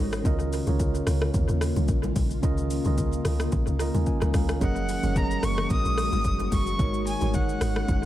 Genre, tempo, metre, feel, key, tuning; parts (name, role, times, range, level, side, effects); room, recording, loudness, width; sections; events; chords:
amapiano; 110 BPM; 4/4; swing 55% on 16ths; Db major; A4 = 440 Hz
mellow tine electric piano; accompaniment; 0.0-8.1 s; Db3 to Bb5; -30 LUFS; right 2 dB; medium stereo tremolo, analog delay
ethereal airy pad; sustained chords; 0.0-8.1 s; Eb3 to Gb4; -34 LUFS; left 2 dB; ensemble chorus, built-in reverb
deep log drum bass; bass; 0.0-8.0 s; Gb1 to Eb2; -27 LUFS; equal
deep house drum kit; drums; 0.1-8.1 s; hi-hat, kick drum, rim click, shaker; -28 LUFS; equal; overdrive, analog delay
congas; percussion; 0.3-8.0 s; -35 LUFS; left 2 dB
clear erhu; melody; 4.6-8.1 s; Gb5 to Eb6; -31 LUFS; equal; analog delay
digital ambience; echo-heavy mix; -23 LUFS; side -13 dB against mid
0.0-8.1 A section
tine electric piano fill 3.5-4.6
0.2 Db69; 4.6 Gb69